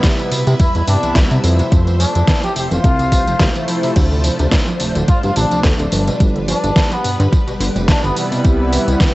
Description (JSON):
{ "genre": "nu-disco, nu disco", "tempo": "107 BPM", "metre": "4/4", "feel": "swing 55% on 16ths", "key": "unclear", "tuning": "A4 = 440 Hz", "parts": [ { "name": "string machine, full ensemble", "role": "sustained chords", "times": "0.0-9.1 s", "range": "F3 to E5", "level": "-24 LUFS", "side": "equal", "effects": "phaser, ensemble chorus, sidechain pumping, cassette tape" }, { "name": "analog pluck", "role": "arpeggios", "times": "0.0-9.1 s", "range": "B2 to F3", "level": "-26 LUFS", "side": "right 1 dB", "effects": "chorus, sidechain pumping, cassette tape, tape echo" }, { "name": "electronic kick drum", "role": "drums", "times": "0.0-9.1 s", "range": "none", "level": "-14 LUFS", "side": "equal", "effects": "overdrive, cassette tape" }, { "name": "pop drum kit", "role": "drums", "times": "0.0-9.1 s", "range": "crash cymbal, hi-hat, snare drum, tambourine", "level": "-21 LUFS", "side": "equal", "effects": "overdrive, cassette tape" }, { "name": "chorused synth bass", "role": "bass", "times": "0.3-9.0 s", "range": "D1 to C3", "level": "-17 LUFS", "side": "equal", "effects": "tube saturation" }, { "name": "muted trumpet section", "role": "melody", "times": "0.6-8.3 s", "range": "B3 to G4", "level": "-22 LUFS", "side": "left 1 dB", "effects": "cassette tape, tape echo" }, { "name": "warm analog pad", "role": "accompaniment", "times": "0.9-9.0 s", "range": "B2 to E4", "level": "-23 LUFS", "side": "equal", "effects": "chorus, sidechain pumping, cassette tape, tape echo" } ], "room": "light reverb", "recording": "home recording on cassette, nothing above 8.0 kHz", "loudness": "-13 LUFS", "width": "side -19 dB against mid", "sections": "0.0-9.1 A section", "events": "none", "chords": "0.0 Cmaj7; 1.4 Fmaj7; 4.0 Dm7; 5.9 G7; 8.2 Cmaj7" }